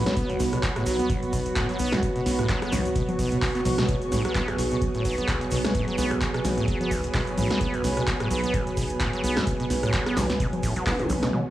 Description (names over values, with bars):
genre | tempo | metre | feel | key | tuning
acid house | 129 BPM | 4/4 | swing 56% on 16ths | unclear | A4 = 440 Hz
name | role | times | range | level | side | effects
lush unison pad | sustained chords | 0.0-11.5 s | B2 to B4 | -28 LUFS | right 1 dB | chorus, sidechain pumping
acid bass, saw | riff | 0.0-11.4 s | B1 to B3 | -30 LUFS | equal | overdrive, sidechain pumping, tape echo
saturated sub bass | bass | 0.0-11.2 s | B1 | -30 LUFS | equal | sidechain pumping
ethereal airy pad | texture | 0.0-11.5 s | B3 to C#6 | -33 LUFS | right 2 dB | ensemble chorus, built-in reverb, tremolo, sidechain pumping
electro analog drum machine | drums | 0.1-11.3 s | congas, handclaps, hi-hat, rim click, snare drum, toms | -29 LUFS | equal | overdrive
egg shaker | percussion | 0.1-11.3 s | none | -43 LUFS | right 2 dB | none
electronic kick drum | drums | 0.2-11.0 s | none | -29 LUFS | equal | none
room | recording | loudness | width
digital ambience | dry, gritty hardware recording, studio reverb | -22 LUFS | side -14 dB against mid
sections
0.0-11.3 A section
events
drop 0.0-11.3; drum fill 10.9-11.3; band accent 10.9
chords
0.0 B5